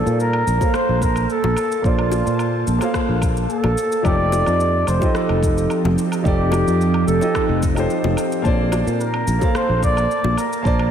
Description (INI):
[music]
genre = sunset chillout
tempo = 109 BPM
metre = 4/4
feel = straight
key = Bb major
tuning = A4 = 440 Hz
[part]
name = trumpet with bucket mute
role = melody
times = 0.0-10.9 s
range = F4 to D5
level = -22 LUFS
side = right 1 dB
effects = digital delay, slapback echo
[part]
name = warm concert grand piano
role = accompaniment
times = 0.0-10.9 s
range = F3 to A5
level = -24 LUFS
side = moving between left 3 dB and right 4 dB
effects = auto-pan, low-pass filter, digital delay, slapback echo
[part]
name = ethereal airy pad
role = sustained chords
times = 0.0-10.9 s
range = F3 to A5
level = -25 LUFS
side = right 1 dB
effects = ensemble chorus, built-in reverb
[part]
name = sustaining fretless electric bass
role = bass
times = 0.1-10.9 s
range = F1 to Bb2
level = -20 LUFS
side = equal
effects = none
[part]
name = electronic shaker, woodblock and rim click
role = drums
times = 0.1-10.9 s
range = none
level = -31 LUFS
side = equal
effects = small room ambience, slapback echo
[part]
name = electronic kick drum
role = drums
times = 0.6-10.8 s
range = none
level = -21 LUFS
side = equal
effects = small room ambience
[part]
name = bongos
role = percussion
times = 0.6-10.3 s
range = none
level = -32 LUFS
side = left 5 dB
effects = none
[sound]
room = moderate lush hall reverb, RT60 2.4 s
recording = big arena sound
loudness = -16 LUFS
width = side -8 dB against mid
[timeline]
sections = 0.0-10.9 A section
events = filter sweep on grand piano 0.0-10.9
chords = 0.0 Bbmaj9; 4.0 F13; 8.4 Bbmaj9